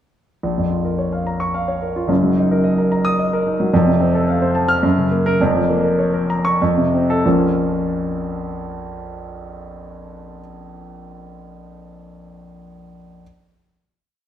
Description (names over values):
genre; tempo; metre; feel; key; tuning
classical, virtuoso piano study; 92-111 BPM; 3/4; rubato; Bb minor; A4 = 440 Hz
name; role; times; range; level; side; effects
warm grand piano; solo; 0.4-13.2 s; F1 to F6; -17 LUFS; equal; none
room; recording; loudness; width
wet recital hall reverb, RT60 1.8 s; minimal, uncompressed stereo recording; -16 LUFS; side -10 dB against mid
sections
0.4-7.2 A section; 7.2-11.0 final chord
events
slowing down 2.9-7.2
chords
0.4 Bbm; 2.1 Ebm/Gb; 3.7 F; 4.8 Gb; 5.4 Bbm/F; 6.6 F; 7.2 Bbm